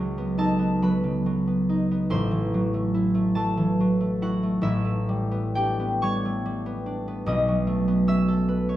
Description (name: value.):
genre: classical, solo harp piece.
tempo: 41-49 BPM (dotted quarters).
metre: 6/8.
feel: rubato.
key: unclear.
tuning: A4 = 439 Hz.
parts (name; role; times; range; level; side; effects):
concert harp; solo; 0.0-8.8 s; A1 to E6; -22 LUFS; equal; none.
room: wet recital hall reverb, RT60 1.4 s.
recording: heard from further back in the room.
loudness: -22 LUFS.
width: side -13 dB against mid.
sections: 0.0-8.8 A section.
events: none.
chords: 0.0 Badd9/C#; 2.1 Am6; 4.6 Gadd9/A; 7.3 B9sus4.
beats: 0.81 | 2.11 3.37 | 4.63 6.01 | 7.26 8.49.